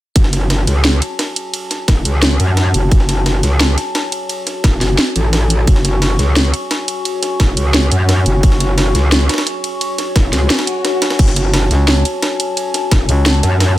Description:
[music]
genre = dark technical drum and bass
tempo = 174 BPM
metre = 4/4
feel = straight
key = F# minor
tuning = A4 = 442 Hz
[part]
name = dark analog pad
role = sustained chords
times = 0.2-13.8 s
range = F#4 to C#6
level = -22 LUFS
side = left 2 dB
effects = lush chorus, sidechain pumping
[part]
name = metallic wobble bass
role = bass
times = 0.2-13.8 s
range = E1 to F#2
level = -14 LUFS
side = equal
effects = chorus, overdrive, sidechain pumping
[part]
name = breakbeat sampler-style drum kit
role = drums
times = 0.2-13.7 s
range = ride cymbal, snare drum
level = -22 LUFS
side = equal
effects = high-pass filter on cymbals, high-pass filter on snare
[part]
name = drum and bass drum kit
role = drums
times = 0.2-13.7 s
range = crash cymbal, hi-hat, snare drum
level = -16 LUFS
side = equal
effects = none
[part]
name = electronic kick drum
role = drums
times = 0.2-13.0 s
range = none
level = -11 LUFS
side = equal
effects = none
[part]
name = swell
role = sound effects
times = 10.6-11.2 s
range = none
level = -23 LUFS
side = left 3 dB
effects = none
[part]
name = growling FM bass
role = bass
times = 11.7-13.4 s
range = C#2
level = -12 LUFS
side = equal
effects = none
[sound]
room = little or no reverb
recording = none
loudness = -12 LUFS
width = side -15 dB against mid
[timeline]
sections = 0.2-13.8 A section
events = swell 10.6-11.2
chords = 0.2 F#madd9

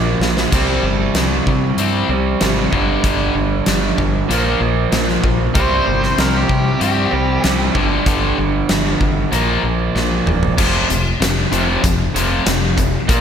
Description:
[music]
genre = classic rock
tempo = 96 BPM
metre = 4/4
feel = straight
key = unclear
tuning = A4 = 440 Hz
[part]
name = overdriven electric guitar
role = riff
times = 0.0-13.2 s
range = F2 to C4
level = -20 LUFS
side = left 8 dB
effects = slapback echo
[part]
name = raw garage guitar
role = riff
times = 0.0-13.2 s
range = F2 to C4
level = -20 LUFS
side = right 9 dB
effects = overdrive, slapback echo
[part]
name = fingered electric bass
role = bass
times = 0.0-13.2 s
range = E1 to C3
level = -21 LUFS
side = equal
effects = none
[part]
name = huge arena drum kit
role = drums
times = 0.2-13.2 s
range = crash cymbal, hi-hat, kick drum, snare drum, toms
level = -19 LUFS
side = equal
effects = none
[part]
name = octave-fuzz lead guitar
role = second line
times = 5.5-7.4 s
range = G4 to C5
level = -21 LUFS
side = left 1 dB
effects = distortion, analog delay
[sound]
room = moderate lush hall reverb, RT60 2.5 s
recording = big arena sound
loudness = -14 LUFS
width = side -8 dB against mid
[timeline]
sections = 0.0-10.6 A section; 10.6-13.2 B section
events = drum fill 0.0-0.5, 9.9-10.6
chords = 0.0 Bb5; 0.5 C5; 2.7 G5; 4.3 Bb5; 5.6 C5; 7.8 G5; 9.3 Bb5; 10.6 F5

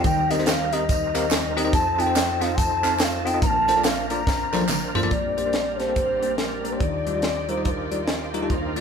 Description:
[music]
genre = uptempo gospel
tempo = 142 BPM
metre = 4/4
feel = swing 62% on 8ths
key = Bb major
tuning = A4 = 439 Hz
[part]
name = bass bansuri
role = melody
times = 0.0-8.3 s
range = Bb4 to Bb5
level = -24 LUFS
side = equal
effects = none
[part]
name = bell-like tine electric piano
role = accompaniment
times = 0.0-8.8 s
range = Bb1 to F5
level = -26 LUFS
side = left 2 dB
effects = phaser
[part]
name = overdriven tonewheel organ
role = sustained chords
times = 0.0-8.8 s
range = Eb2 to Bb4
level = -30 LUFS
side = right 1 dB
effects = slow rotary speaker, chorus vibrato
[part]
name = tight funk drum kit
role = drums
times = 0.0-8.8 s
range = hi-hat, kick drum, snare drum, toms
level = -25 LUFS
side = equal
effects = none
[part]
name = tambourine and handclaps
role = percussion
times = 0.0-5.0 s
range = none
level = -32 LUFS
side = right 2 dB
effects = none
[part]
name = warm studio string section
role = sustained chords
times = 5.1-8.8 s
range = Eb3 to D5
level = -36 LUFS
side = right 1 dB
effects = none
[sound]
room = wet large studio reverb, RT60 0.9 s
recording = band playing live in one room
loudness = -20 LUFS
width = side -6 dB against mid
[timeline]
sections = 0.0-5.1 A section; 5.1-8.8 B section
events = drum fill 4.3-5.1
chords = 0.0 Cm7/Eb; 1.7 F7; 3.4 Bbmaj9; 5.1 Bb69; 6.8 Ebmaj9

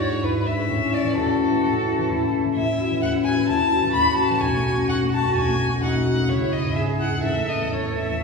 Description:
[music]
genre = quick classical-period movement for piano trio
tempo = 128 BPM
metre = 4/4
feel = rubato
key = unclear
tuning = A4 = 442 Hz
[part]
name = warm violin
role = melody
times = 0.0-8.2 s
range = A4 to B5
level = -24 LUFS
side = left 2 dB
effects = none
[part]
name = rich cello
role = second line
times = 0.0-8.2 s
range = C#4 to A4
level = -27 LUFS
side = right 4 dB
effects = none
[part]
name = dark grand piano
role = accompaniment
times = 0.0-8.2 s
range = A1 to F#4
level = -22 LUFS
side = left 2 dB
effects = none
[sound]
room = wet recital hall reverb, RT60 1.7 s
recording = recorded in a church or concert hall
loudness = -19 LUFS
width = side -4 dB against mid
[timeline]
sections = 0.0-8.2 A section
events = none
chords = 0.0 E7/G#; 0.7 A; 2.6 F#m7/A; 4.4 B7; 6.3 C#m; 7.2 A5

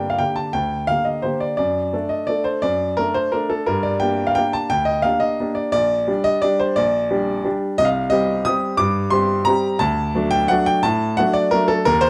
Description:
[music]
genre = classical, piano waltz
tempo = 175 BPM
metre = 3/4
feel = uneven beats, rubato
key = G minor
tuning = A4 = 440 Hz
[part]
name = warm baby grand piano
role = solo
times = 0.0-12.1 s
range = Bb1 to Eb6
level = -20 LUFS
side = equal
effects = none
[sound]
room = light reverb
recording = none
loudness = -20 LUFS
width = mono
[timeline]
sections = 0.0-12.1 A section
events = none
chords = 0.0 Gm; 1.6 D/F#; 3.7 Gm; 5.7 Gm/Bb; 7.8 Cm; 9.8 D

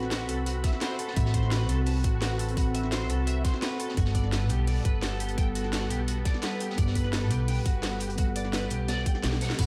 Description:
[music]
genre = liquid drum and bass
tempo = 171 BPM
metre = 4/4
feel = straight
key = unclear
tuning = A4 = 438 Hz
[part]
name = mellow tine electric piano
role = accompaniment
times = 0.0-9.7 s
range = G3 to B5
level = -37 LUFS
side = equal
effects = tape echo
[part]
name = warm analog pad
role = sustained chords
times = 0.0-9.6 s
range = B3 to B5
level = -40 LUFS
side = equal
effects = chorus, sidechain pumping
[part]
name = electric guitar at the edge of break-up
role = arpeggios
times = 0.0-9.7 s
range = F#4 to A5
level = -40 LUFS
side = equal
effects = ensemble chorus, analog delay
[part]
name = upright bass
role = bass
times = 0.0-9.7 s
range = G1 to C2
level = -31 LUFS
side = equal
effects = none
[part]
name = drum and bass drum kit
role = drums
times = 0.0-9.7 s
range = crash cymbal, hi-hat, snare drum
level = -38 LUFS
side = equal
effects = none
[part]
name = crunchy breakbeat drum kit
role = drums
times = 0.1-9.7 s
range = hi-hat, snare drum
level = -41 LUFS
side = equal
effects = high-pass filter on hats, high-pass filter on snare, high-pass filter on room
[part]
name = electronic kick drum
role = drums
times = 0.6-9.7 s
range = none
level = -29 LUFS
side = equal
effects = none
[sound]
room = light reverb, small room ambience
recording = none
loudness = -28 LUFS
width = mono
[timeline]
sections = 0.0-9.6 A section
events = drop 0.0-9.6; kick drops out 9.2-9.6; drum fill 9.3; band accent 9.5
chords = 0.0 Am69; 4.0 Gmaj9

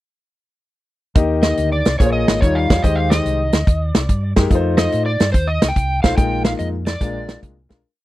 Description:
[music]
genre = uptempo gospel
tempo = 144 BPM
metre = 4/4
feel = swing 66% on 8ths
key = Eb major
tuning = A4 = 441 Hz
[part]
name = warm concert grand piano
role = accompaniment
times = 1.2-7.8 s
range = Bb2 to Eb5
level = -21 LUFS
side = left 3 dB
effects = none
[part]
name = fingered electric bass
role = bass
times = 1.2-7.8 s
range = Ab1 to A2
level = -21 LUFS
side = equal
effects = none
[part]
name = warm soul drum kit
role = drums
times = 1.2-7.8 s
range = hi-hat, kick drum, snare drum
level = -16 LUFS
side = equal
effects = none
[part]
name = overdriven slide guitar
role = melody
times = 1.4-7.4 s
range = C5 to G5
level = -22 LUFS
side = equal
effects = none
[sound]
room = little or no reverb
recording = dry, close 1970s-style studio recording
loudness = -15 LUFS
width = side -16 dB against mid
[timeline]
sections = 1.2-7.8 breakdown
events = fade-out 6.2-7.8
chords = 1.2 Ebmaj7; 2.0 Bbm7; 2.4 Eb9; 2.8 Abmaj7; 4.5 F7; 6.2 Bb7sus4; 7.0 Bb7

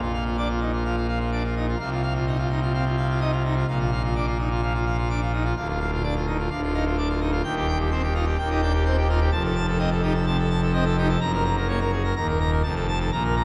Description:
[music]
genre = classical, organ toccata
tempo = 127 BPM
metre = 4/4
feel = straight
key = Bb major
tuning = A4 = 440 Hz
[part]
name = pipe organ, full organ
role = solo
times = 0.0-13.4 s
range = D1 to Bb5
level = -24 LUFS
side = equal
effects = none
[sound]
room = wet cathedral reverb, RT60 4.2 s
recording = none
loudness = -24 LUFS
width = mono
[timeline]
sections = 0.0-13.4 A section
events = none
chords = 0.0 Bb; 1.8 F5/C; 3.7 Bb; 5.6 Dm; 7.4 Cm/Eb; 9.3 F7; 11.2 Gb; 12.2 Eb5; 12.6 F

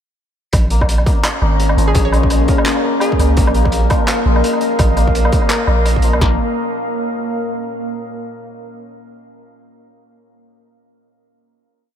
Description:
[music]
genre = half-time drum and bass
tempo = 169 BPM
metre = 4/4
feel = swing 58% on 16ths, half-time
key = Bb minor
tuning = A4 = 440 Hz
[part]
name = deep dark ambient pad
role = sustained chords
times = 1.3-7.6 s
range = Bb3 to F5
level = -21 LUFS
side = equal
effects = chorus, built-in reverb, sidechain pumping
[part]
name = long sustained 808-style bass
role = bass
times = 0.5-6.4 s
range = Ab1 to Db2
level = -15 LUFS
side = equal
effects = none
[part]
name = crunchy breakbeat drum kit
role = drums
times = 0.5-6.2 s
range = handclaps, hi-hat, woodblock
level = -21 LUFS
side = equal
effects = none
[part]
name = industrial drum kit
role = drums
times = 0.5-6.3 s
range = kick drum, snare drum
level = -17 LUFS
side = equal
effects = distortion, overdrive
[part]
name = metallic inharmonic drone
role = texture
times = 0.9-6.2 s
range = Db4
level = -24 LUFS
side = left 2 dB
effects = chorus, built-in reverb
[part]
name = santur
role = arpeggios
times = 0.7-7.4 s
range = F3 to Bb4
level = -25 LUFS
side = left 4 dB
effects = analog delay
[part]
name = hollow square pluck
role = melody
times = 1.9-3.3 s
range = Ab4 to Db5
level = -26 LUFS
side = equal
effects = chorus, cassette tape, analog delay
[sound]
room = moderate cathedral reverb, RT60 4.8 s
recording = dreamy mix soaked in reverb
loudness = -13 LUFS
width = side -9 dB against mid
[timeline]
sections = 0.5-6.2 drop; 6.2-7.6 final chord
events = drop 0.5-6.2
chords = 0.5 Bbm

